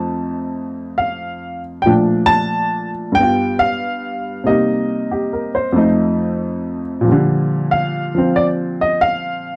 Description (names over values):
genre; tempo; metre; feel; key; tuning
solo jazz; 92 BPM; 4/4; swing 67% on 8ths; Bb major; A4 = 440 Hz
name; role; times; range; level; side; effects
clear upright piano; solo; 0.0-9.6 s; F2 to A5; -18 LUFS; equal; none
room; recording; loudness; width
light reverb; close, detailed microphones; -18 LUFS; mono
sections
0.0-9.6 A section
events
none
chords
0.0 F7; 1.8 Bbmaj7; 3.2 G7; 4.5 Cm7; 5.8 F7; 7.1 Bb6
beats
0.54 1.20 | 1.85 2.50 3.15 3.81 | 4.46 5.11 5.76 6.42 | 7.07 7.72 8.37 9.03